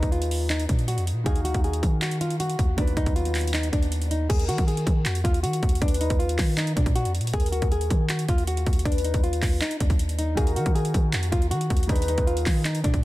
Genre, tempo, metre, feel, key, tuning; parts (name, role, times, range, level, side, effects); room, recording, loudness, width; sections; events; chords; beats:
hip hop, trap; 158 BPM; 4/4; half-time; Eb harmonic minor; A4 = 440 Hz
nylon-string guitar; melody; 0.0-13.0 s; D4 to Ab4; -30 LUFS; left 1 dB; low-pass filter, ping-pong delay
warm concert grand piano; accompaniment; 0.0-4.3, 10.4-13.0 s; Eb3 to F5; -35 LUFS; equal; low-pass filter
warm 808-style bass; bass; 0.0-13.0 s; D2 to Eb3; -26 LUFS; equal
trap drum kit; drums; 0.0-13.0 s; crash cymbal, handclaps, hi-hat, kick drum; -25 LUFS; equal
gliding portamento lead; second line; 4.3-12.6 s; Bb4 to Cb5; -34 LUFS; left 2 dB; chorus, phaser, ping-pong delay
little or no reverb; dense, heavily limited modern master; -21 LUFS; side -17 dB against mid
0.0-4.3 A section; 4.3-13.0 B section
0.0 Abm/Eb; 1.3 Ebmadd9; 2.8 B/D#; 4.3 Ebm; 8.9 B/D#; 10.4 Ebmadd9; 11.9 Abm/Eb
0.12 0.50 0.88 | 1.26 1.64 2.02 2.40 | 2.78 3.16 3.54 3.92 | 4.30 4.68 5.06 5.44 | 5.82 6.20 6.58 6.96 | 7.33 7.71 8.10 8.47 | 8.85 9.23 9.61 9.99 | 10.37 10.75 11.13 11.51 | 11.89 12.27 12.65 13.03